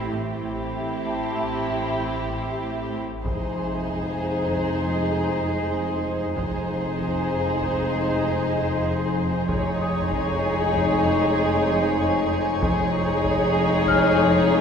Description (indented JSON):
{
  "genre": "cinematic, suspense film score",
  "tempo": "96 BPM",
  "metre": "5/4",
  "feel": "straight",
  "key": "F minor from 3.2 s",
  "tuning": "A4 = 441 Hz",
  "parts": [
    { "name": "dark studio violin section", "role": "melody", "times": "0.0-14.6 s", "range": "G4 to Db5", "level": "-29 LUFS", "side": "left 2 dB", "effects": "none" },
    { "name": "dark studio violin section", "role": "second line", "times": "0.0-14.6 s", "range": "E4 to Ab4", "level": "-27 LUFS", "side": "left 1 dB", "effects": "none" },
    { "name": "warm chamber viola section", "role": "accompaniment", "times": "0.0-14.6 s", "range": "C4 to Eb4", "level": "-31 LUFS", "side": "equal", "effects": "none" },
    { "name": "dark studio double bass section", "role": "bass", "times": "0.0-14.6 s", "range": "F1 to A1", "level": "-32 LUFS", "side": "right 2 dB", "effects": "none" },
    { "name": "warm studio cello section", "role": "bass", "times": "0.0-14.6 s", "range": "F2 to A2", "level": "-29 LUFS", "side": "equal", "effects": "none" },
    { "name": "swarming drone", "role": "drone", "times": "0.0-14.6 s", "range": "A1 to F2", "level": "-33 LUFS", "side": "equal", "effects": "built-in reverb" },
    { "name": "celesta", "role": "texture", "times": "0.0-14.6 s", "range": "A5 to F6", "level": "-30 LUFS", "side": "left 5 dB", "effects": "none" },
    { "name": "warm studio cello section", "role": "riff", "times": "0.1-14.6 s", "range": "F2 to A3", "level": "-34 LUFS", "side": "right 2 dB", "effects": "none" },
    { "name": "dark French horn section", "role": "sustained chords", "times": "3.2-14.6 s", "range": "Ab3 to Eb4", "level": "-28 LUFS", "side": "left 1 dB", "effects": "none" },
    { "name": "taiko ensemble", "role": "drums", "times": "3.2-14.5 s", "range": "none", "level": "-33 LUFS", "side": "equal", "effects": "none" },
    { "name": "dark chamber violin section", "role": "texture", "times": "9.5-14.6 s", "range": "Ab5 to Db6", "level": "-33 LUFS", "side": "left 3 dB", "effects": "none" }
  ],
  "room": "wet scoring stage reverb, RT60 1.7 s",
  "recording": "heard from further back in the room",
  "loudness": "-21 LUFS",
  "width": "side -7 dB against mid",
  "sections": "0.0-3.2 A section; 3.2-14.6 B section",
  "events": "none",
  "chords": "0.0 C/A; 3.2 Fm7"
}